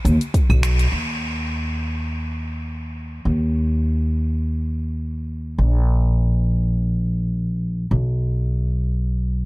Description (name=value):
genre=organic downtempo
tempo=free time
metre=none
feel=none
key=unclear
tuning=A4 = 440 Hz
part: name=upright bass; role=bass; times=0.0-9.5 s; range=Bb1 to D#2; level=-19 LUFS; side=equal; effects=sidechain pumping
part: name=deep house drum kit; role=drums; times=0.1-0.9 s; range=claves, finger snaps, hi-hat, shaker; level=-29 LUFS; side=equal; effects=low-pass filter on snare, studio reverb, low-pass filter on hats, low-pass filter on perc
part: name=electronic kick drum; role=drums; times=0.3-0.5 s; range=none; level=-18 LUFS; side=equal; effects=studio reverb
room=little or no reverb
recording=none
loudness=-19 LUFS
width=side -22 dB against mid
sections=0.9-9.5 A section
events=band accent 0.6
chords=none